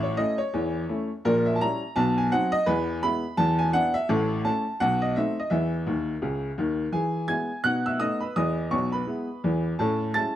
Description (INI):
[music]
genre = jazz, stride piano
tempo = 168 BPM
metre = 4/4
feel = swing 60% on 8ths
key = E major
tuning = A4 = 440 Hz
[part]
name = clear upright piano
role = solo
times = 0.0-10.4 s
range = A1 to A6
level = -23 LUFS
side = equal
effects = none
[sound]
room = moderate spring reverb, RT60 1.6 s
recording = dark, warm production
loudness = -23 LUFS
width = side -12 dB against mid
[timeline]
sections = 0.0-6.9 A section; 6.9-10.4 A section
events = upright piano fill 5.9-6.9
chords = 0.0 A; 1.2 A#dim7; 2.0 B; 2.7 E; 3.4 E5; 4.1 A; 4.8 B7b9; 5.5 C#madd9; 6.9 E; 7.7 B7; 8.4 E; 9.8 Amaj7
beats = 0.17 0.53 0.88 | 1.24 1.60 1.95 2.31 | 2.67 3.02 3.38 3.73 | 4.09 4.45 4.80 5.16 | 5.51 5.87 6.23 6.58 | 6.94 7.29 7.65 8.01 | 8.36 8.72 9.08 9.43 | 9.79 10.14